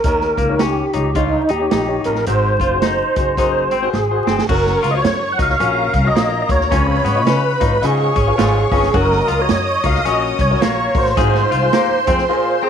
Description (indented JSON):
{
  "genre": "uptempo 1960s-style soul",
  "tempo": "108 BPM",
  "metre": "4/4",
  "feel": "swing 61% on 8ths",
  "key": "unclear",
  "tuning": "A4 = 440 Hz",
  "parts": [
    { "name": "tonewheel organ", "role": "melody", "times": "0.0-12.7 s", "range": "Eb4 to Gb5", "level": "-18 LUFS", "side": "right 2 dB", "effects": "chorus vibrato, slow rotary speaker" },
    { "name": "warm grand piano", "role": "accompaniment", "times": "0.0-12.6 s", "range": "Ab2 to Eb5", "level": "-24 LUFS", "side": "left 9 dB", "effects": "none" },
    { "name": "growling baritone saxophone", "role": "riff", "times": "0.0-12.6 s", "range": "Eb2 to Bb2", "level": "-27 LUFS", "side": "right 12 dB", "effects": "none" },
    { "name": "upright bass", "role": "bass", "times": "0.0-12.2 s", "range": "Gb1 to Db3", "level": "-20 LUFS", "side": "equal", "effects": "none" },
    { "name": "swinging big-band drum kit", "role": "drums", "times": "0.0-12.2 s", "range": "crash cymbal, hi-hat, kick drum, snare drum", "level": "-21 LUFS", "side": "right 2 dB", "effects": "none" },
    { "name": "semi-hollow electric guitar", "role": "riff", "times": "0.4-12.7 s", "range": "Bb3 to Ab4", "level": "-24 LUFS", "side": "left 10 dB", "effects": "none" },
    { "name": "warm studio violin section", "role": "second line", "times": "4.5-12.7 s", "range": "Bb4 to Eb6", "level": "-25 LUFS", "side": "equal", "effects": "none" }
  ],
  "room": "light reverb, small room ambience",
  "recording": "1960s-style stereo with parts hard left and right, vinyl crackle",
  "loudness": "-14 LUFS",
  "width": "side -8 dB against mid",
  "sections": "0.0-4.5 A section; 4.5-12.7 B section",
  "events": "drum fill 3.9-4.5",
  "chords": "0.0 Eb7; 2.3 Ab7; 4.5 Gb; 6.7 Db7; 8.9 Gb; 11.2 Ab6"
}